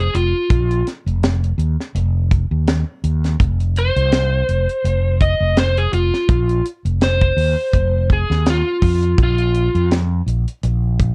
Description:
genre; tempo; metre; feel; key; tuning
straight-eighth soul blues; 83 BPM; 4/4; swing 56% on 16ths; F minor; A4 = 441 Hz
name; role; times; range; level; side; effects
overdriven slide guitar; melody; 0.0-9.9 s; F4 to Eb5; -22 LUFS; equal; none
fretless electric bass; bass; 0.0-11.1 s; F1 to F2; -20 LUFS; equal; none
tight funk drum kit; drums; 0.1-11.1 s; hi-hat, kick drum, snare drum; -20 LUFS; equal; none
room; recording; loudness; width
light reverb; cassette tape; -17 LUFS; mono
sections
0.0-11.1 A section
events
none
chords
0.0 F5; 9.2 Bb5

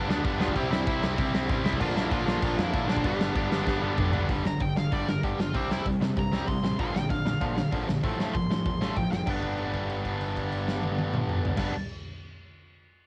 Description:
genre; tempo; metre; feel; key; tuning
punk rock; 193 BPM; 4/4; straight; unclear; A4 = 440 Hz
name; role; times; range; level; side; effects
high-gain lead guitar; melody; 0.0-9.3 s; D4 to C6; -38 LUFS; equal; distortion, cassette tape, tape echo
crunchy overdriven guitar; riff; 0.0-11.7 s; G2 to E4; -38 LUFS; equal; none
high-gain distorted guitar; riff; 0.0-4.3 s; G2 to C4; -39 LUFS; equal; none
tight distorted guitar; riff; 0.0-11.7 s; G2 to E4; -32 LUFS; equal; distortion
fuzz picked electric bass; bass; 0.0-11.7 s; F1 to C3; -37 LUFS; equal; overdrive
big rock drum kit; drums; 0.1-11.7 s; crash cymbal, hi-hat, kick drum, snare drum, toms; -32 LUFS; equal; cassette tape
room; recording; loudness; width
little or no reverb; home recording on cassette; -28 LUFS; mono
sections
0.0-4.3 A section; 4.3-9.3 B section; 9.3-11.8 C section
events
drum fill 3.7-4.3; lead electric guitar solo 4.3-9.3; held note 9.3-11.6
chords
0.0 G; 0.6 C; 1.8 Bb; 3.0 G; 4.3 G5; 5.5 C5; 6.8 Bb; 8.0 F/A; 9.3 G

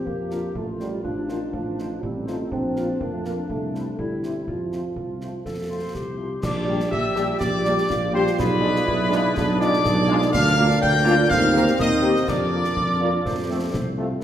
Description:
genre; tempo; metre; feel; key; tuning
military-style march for wind band; 123 BPM; 2/4; straight; Bb major from 10.3 s; A4 = 440 Hz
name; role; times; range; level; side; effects
warm euphonium; second line; 0.0-14.0 s; Eb3 to G4; -29 LUFS; right 2 dB; none
warm woodwind section; second line; 0.0-14.0 s; C4 to D5; -29 LUFS; left 1 dB; none
dark tuba; bass; 0.1-14.1 s; G1 to F2; -25 LUFS; right 1 dB; none
concert bass drum, concert snare drum and clash cymbals; drums; 0.1-13.9 s; none; -32 LUFS; left 1 dB; none
bright trumpet section; melody; 0.3-13.8 s; Bb4 to G5; -27 LUFS; right 1 dB; none
warm French horn section; accompaniment; 0.3-14.1 s; F3 to G4; -29 LUFS; left 2 dB; none
mellow hollow piccolo; second line; 5.7-13.8 s; B5 to G6; -27 LUFS; left 3 dB; none
dark trombone section; sustained chords; 6.6-14.1 s; G3 to D4; -30 LUFS; right 2 dB; none
room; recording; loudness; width
wet recital hall reverb, RT60 1.7 s; recorded in a church or concert hall; -20 LUFS; side -10 dB against mid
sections
0.0-6.4 A section; 6.4-14.2 B section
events
none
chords
0.0 Bb; 0.6 F7/A; 2.5 Bb; 3.5 C; 4.5 F; 6.4 Gm/Bb; 8.4 Bdim7; 10.3 Bb/D; 11.3 Cm7/Eb; 12.3 Bb/F; 13.3 F

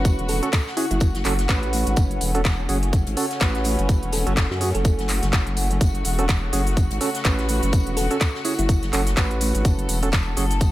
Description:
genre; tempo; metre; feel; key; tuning
bass house; 125 BPM; 4/4; swing 57% on 16ths; F# minor; A4 = 440 Hz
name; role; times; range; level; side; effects
clear studio string section; sustained chords; 0.0-10.7 s; C#3 to A4; -32 LUFS; left 2 dB; vintage 12-bit sampler grit, sidechain pumping
percussive organ stab; stabs; 0.0-10.5 s; C#4 to B4; -28 LUFS; right 4 dB; chorus, sidechain pumping, tape echo
vowel-sweep wobble bass; bass; 0.0-10.7 s; E1 to F#2; -23 LUFS; equal; chorus, tube saturation, sidechain pumping
electronic kick drum; drums; 0.0-10.7 s; none; -19 LUFS; equal; small room ambience
house drum kit; drums; 0.0-10.7 s; cabasa, handclaps, hi-hat; -27 LUFS; equal; small room ambience
granular cloud pad; texture; 0.0-10.7 s; F#5; -34 LUFS; equal; built-in reverb, sidechain pumping
natural country drum kit; drums; 0.1-10.7 s; hi-hat, snare drum, tambourine; -37 LUFS; left 4 dB; high-pass filter on hats, small room ambience, high-pass filter on snare, high-pass filter on perc, high-pass filter on room
thumb-piano-like synth pluck; melody; 0.3-1.0, 4.1-8.7 s; E4 to A4; -29 LUFS; equal; chorus, tape echo
room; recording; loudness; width
light reverb, small room ambience; none; -19 LUFS; side -15 dB against mid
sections
0.0-10.7 A section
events
none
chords
0.0 F#m

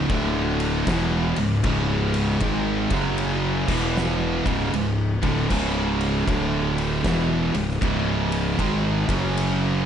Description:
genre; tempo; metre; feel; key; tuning
stoner and doom metal; 78 BPM; 4/4; swing 64% on 8ths; unclear; A4 = 440 Hz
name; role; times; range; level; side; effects
high-gain distorted guitar; riff; 0.0-9.9 s; C#2 to G#3; -28 LUFS; equal; distortion
thick fuzz guitar; riff; 0.0-9.8 s; C#2 to G#3; -27 LUFS; left 7 dB; distortion
thick fuzz guitar; riff; 0.0-9.8 s; C#2 to G#3; -26 LUFS; right 7 dB; distortion
fuzz fingered electric bass; bass; 0.0-9.8 s; C#1 to G#1; -28 LUFS; equal; overdrive
oversized low-tuned drum kit; drums; 0.1-9.6 s; crash cymbal, kick drum, ride cymbal, snare drum; -28 LUFS; left 1 dB; none
room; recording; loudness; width
light reverb, studio reverb; nothing above 10.8 kHz; -20 LUFS; side -8 dB against mid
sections
0.0-9.9 A section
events
none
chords
0.1 D5; 0.9 C#m; 2.8 F#5; 3.6 E5; 4.4 C#5; 6.3 D5; 7.1 C#m; 9.0 F#5

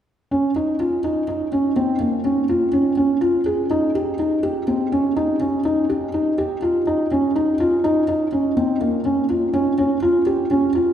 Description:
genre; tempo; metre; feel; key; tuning
contemporary instrumental, contemporary; 124 BPM; 7/4; straight; unclear; A4 = 439 Hz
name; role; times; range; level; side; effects
felt-muted upright piano; arpeggios; 0.3-10.9 s; Bb3 to Ab4; -17 LUFS; equal; none
room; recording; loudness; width
wet cathedral reverb, RT60 5.5 s; recorded in a church or concert hall; -17 LUFS; side -9 dB against mid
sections
0.3-10.9 A section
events
none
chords
none

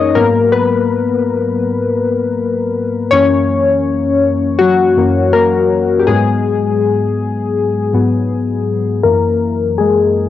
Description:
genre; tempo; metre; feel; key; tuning
R&B; 81 BPM; 4/4; straight; G# minor; A4 = 440 Hz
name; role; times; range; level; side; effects
warm analog keys; solo; 0.0-10.3 s; F#2 to D#5; -12 LUFS; left 3 dB; chorus, cassette tape
room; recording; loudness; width
light reverb; home recording on cassette, low-pass filter; -12 LUFS; side -12 dB against mid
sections
0.0-9.0 A section; 9.0-10.3 B section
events
synth keys solo 0.0-9.0, 9.0-10.3; filter sweep 9.0-10.3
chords
0.2 G#m9; 3.1 F#7; 6.1 G#m7; 9.0 F#7

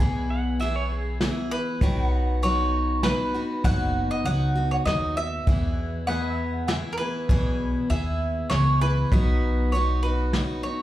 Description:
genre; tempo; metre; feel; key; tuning
honky-tonk and classic country; 99 BPM; 3/4; straight; E major; A4 = 440 Hz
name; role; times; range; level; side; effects
mandolin; melody; 0.0-10.8 s; G#4 to F#5; -28 LUFS; right 2 dB; slapback echo
picked steel-string acoustic guitar; accompaniment; 0.0-10.8 s; E2 to G#4; -29 LUFS; left 2 dB; slapback echo
pedal steel guitar; sustained chords; 0.0-10.8 s; B4 to F#5; -36 LUFS; left 1 dB; none
upright bass; bass; 0.0-10.4 s; F#1 to E2; -26 LUFS; equal; none
pedal steel guitar; second line; 0.3-1.5 s; E4 to F#5; -34 LUFS; right 5 dB; slapback echo
vintage brush drum kit; drums; 0.6-10.5 s; hi-hat, kick drum, snare drum; -24 LUFS; equal; none
room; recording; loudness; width
light reverb, small room reverb; live gig heard through the venue's PA, club reverb; -22 LUFS; side -14 dB against mid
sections
0.0-10.8 A section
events
none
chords
0.0 E; 1.8 B; 5.5 E; 9.1 B

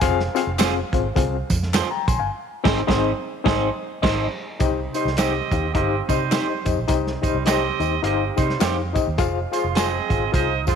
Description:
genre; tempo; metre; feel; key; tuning
uptempo 1960s-style soul; 105 BPM; 4/4; swing 60% on 8ths; unclear; A4 = 444 Hz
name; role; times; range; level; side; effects
overdriven reed electric piano; accompaniment; 0.0-10.8 s; C3 to C6; -24 LUFS; left 9 dB; fast tremolo
vintage muted fingered electric bass; bass; 0.0-10.8 s; F1 to C3; -26 LUFS; right 2 dB; none
crunchy breakbeat drum kit; drums; 0.0-10.8 s; crash cymbal, hi-hat, kick drum, snare drum; -24 LUFS; right 2 dB; none
tambourine and handclaps; percussion; 0.0-10.8 s; none; -35 LUFS; equal; none
electric guitar through a small old amp; stabs; 0.6-9.9 s; C4 to C5; -27 LUFS; right 10 dB; wide subtle chorus
clear horn section; second line; 4.9-10.8 s; G3 to Eb5; -26 LUFS; right 11 dB; none
room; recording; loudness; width
moderate echo chamber reverb, RT60 2.3 s; 1960s-style stereo with parts hard left and right; -19 LUFS; side -7 dB against mid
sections
0.0-4.6 A section; 4.6-10.8 B section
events
band accent 2.3-4.6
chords
0.0 Fm; 2.3 Ab; 4.6 Cm; 9.2 Fm

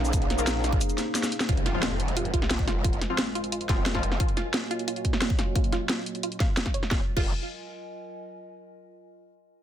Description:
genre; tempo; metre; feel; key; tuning
dark technical drum and bass; 177 BPM; 4/4; straight; F phrygian; A4 = 440 Hz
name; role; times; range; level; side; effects
dark analog pad; sustained chords; 0.0-7.1 s; Ab3 to Db5; -37 LUFS; right 3 dB; chorus, sidechain pumping
growl bass; bass; 0.0-4.2, 6.9-7.3 s; F1 to C2; -30 LUFS; equal; distortion, chorus, overdrive, sidechain pumping
drum and bass drum kit; drums; 0.0-7.2 s; cabasa, crash cymbal, hi-hat, snare drum; -29 LUFS; equal; none
warbly tape-like pad; texture; 0.0-8.2 s; Gb3 to Ab5; -37 LUFS; equal; chorus, built-in reverb, sidechain pumping
electronic kick drum; drums; 0.1-7.2 s; none; -26 LUFS; equal; none
orchestra-hit-like synth stab; stabs; 0.4-4.0 s; F3 to Bb4; -33 LUFS; left 4 dB; built-in reverb, cassette tape, digital delay
wide unison pluck; arpeggios; 1.5-7.3 s; F4 to F5; -34 LUFS; right 3 dB; sidechain pumping, digital delay
impact; sound effects; 1.5-2.8 s; none; -35 LUFS; equal; none
room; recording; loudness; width
little or no reverb; dense, heavily limited modern master; -24 LUFS; side -10 dB against mid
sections
0.0-1.5 A section; 1.5-6.9 B section; 6.9-8.3 C section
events
drop 0.0-1.5; break 0.8-1.5; drum fill 1.1-1.5; fade-out on ambient pad 1.5-6.9; impact 1.5-2.8; filter sweep on synth arpeggio sound 1.5-6.9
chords
0.0 Bbmadd9; 1.5 Fm; 4.2 Gb; 6.9 Fm

